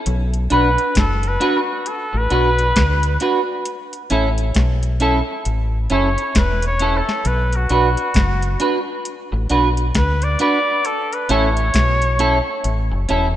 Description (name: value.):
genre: roots reggae.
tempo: 67 BPM.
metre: 4/4.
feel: swing 61% on 16ths.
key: B minor.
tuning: A4 = 437 Hz.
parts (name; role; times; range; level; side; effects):
deep dub fingered electric bass; bass; 0.1-13.3 s; E1 to D2; -19 LUFS; equal; none.
soft vintage rhythm box; drums; 0.1-13.3 s; hi-hat, kick drum, snare drum; -20 LUFS; left 1 dB; none.
clear flugelhorn; melody; 0.5-12.7 s; F#4 to D5; -21 LUFS; equal; tape echo.
clean electric guitar; accompaniment; 0.5-13.3 s; C#4 to B4; -20 LUFS; right 2 dB; analog chorus, tape echo.
room: moderate lush hall reverb, RT60 2.6 s.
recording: rough home demo mix.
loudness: -15 LUFS.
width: side -12 dB against mid.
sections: 0.0-13.4 A section.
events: flugelhorn solo 0.0-13.4; drum fill 12.6-13.4.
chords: 0.1 Bm; 3.7 A; 7.3 Bm; 10.8 A.